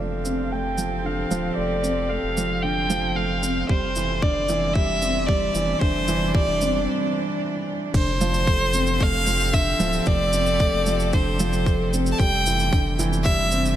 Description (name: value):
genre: piano and strings electronica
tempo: 113 BPM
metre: 4/4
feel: straight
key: F major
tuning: A4 = 440 Hz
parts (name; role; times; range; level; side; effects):
- clear violin; melody; 0.0-13.7 s; C5 to A5; -24 LUFS; equal; low-pass filter, tape echo
- warm string quartet; sustained chords; 0.0-13.8 s; C3 to A4; -30 LUFS; right 1 dB; sidechain pumping
- dark baby grand piano; riff; 0.0-13.8 s; D3 to C4; -26 LUFS; right 1 dB; none
- round analog bass; bass; 0.0-13.8 s; D1 to F1; -28 LUFS; equal; sidechain pumping
- electronic shaker and crash cymbal; drums; 0.3-13.8 s; none; -33 LUFS; right 2 dB; studio ambience
- electronic kick drum; drums; 3.7-13.4 s; none; -21 LUFS; equal; studio ambience
room: light reverb, small room ambience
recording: none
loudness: -20 LUFS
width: side -11 dB against mid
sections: 0.0-7.9 A section; 7.9-13.8 B section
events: build-up 0.0-7.9; filter sweep on violin 0.0-7.9; break 6.9-7.9; drop 7.9-13.8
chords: 0.0 F6; 3.7 Cadd9/F; 7.9 F6; 12.2 Cadd9/F